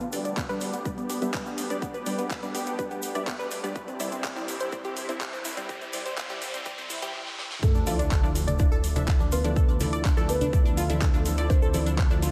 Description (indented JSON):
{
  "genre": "progressive house",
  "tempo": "124 BPM",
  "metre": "4/4",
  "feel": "straight",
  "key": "D dorian",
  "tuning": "A4 = 441 Hz",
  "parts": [
    { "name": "lush unison pad", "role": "sustained chords", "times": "0.0-12.3 s", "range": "C3 to A4", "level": "-39 LUFS", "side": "equal", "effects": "chorus, phaser, sidechain pumping" },
    { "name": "unison pluck", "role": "arpeggios", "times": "0.0-12.3 s", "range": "B3 to D5", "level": "-36 LUFS", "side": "equal", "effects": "sidechain pumping, diffuse ambient delay" },
    { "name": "dark detuned saw bass", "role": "bass", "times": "0.0-12.3 s", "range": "C2 to D2", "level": "-34 LUFS", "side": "equal", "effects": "tube saturation, sidechain pumping, high-pass filter" },
    { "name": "pop drum kit", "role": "drums", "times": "0.0-12.3 s", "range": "handclaps, hi-hat, snare drum", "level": "-38 LUFS", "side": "equal", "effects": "high-pass filter on hats, studio reverb, high-pass filter on snare" },
    { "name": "egg shaker", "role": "percussion", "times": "0.0-12.3 s", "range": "none", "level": "-45 LUFS", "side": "equal", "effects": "none" },
    { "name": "riser and sub drop", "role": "sound effects", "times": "3.0-9.6 s", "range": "none", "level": "-39 LUFS", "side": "equal", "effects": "none" },
    { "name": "unison pluck", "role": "stabs", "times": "0.1-12.2 s", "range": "F3 to G5", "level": "-38 LUFS", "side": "equal", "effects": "sidechain pumping, diffuse ambient delay" },
    { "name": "electronic kick drum", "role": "drums", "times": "0.4-12.1 s", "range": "none", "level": "-26 LUFS", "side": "equal", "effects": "studio reverb" },
    { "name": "dark grand piano", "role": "melody", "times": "7.6-12.1 s", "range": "A3 to C5", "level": "-36 LUFS", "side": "equal", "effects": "analog chorus, sidechain pumping, tape echo" },
    { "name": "congas and bongos", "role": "percussion", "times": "7.9-12.3 s", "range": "none", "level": "-37 LUFS", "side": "equal", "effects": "none" }
  ],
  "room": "moderate lush hall reverb, RT60 2.1 s",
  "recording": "dreamy mix soaked in reverb, high-pass filter",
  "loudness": "-27 LUFS",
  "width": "mono",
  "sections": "0.0-7.6 A section; 7.6-12.3 B section",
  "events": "build-up 0.0-7.6; filter sweep on synth pluck 0.0-7.6; filter sweep 0.0-7.6; riser 3.0-7.6; drum fill 7.3-7.6; drop 7.6-12.3; impact 7.6-9.6",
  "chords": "0.0 G/D; 3.8 Cadd9; 7.6 Dmadd9"
}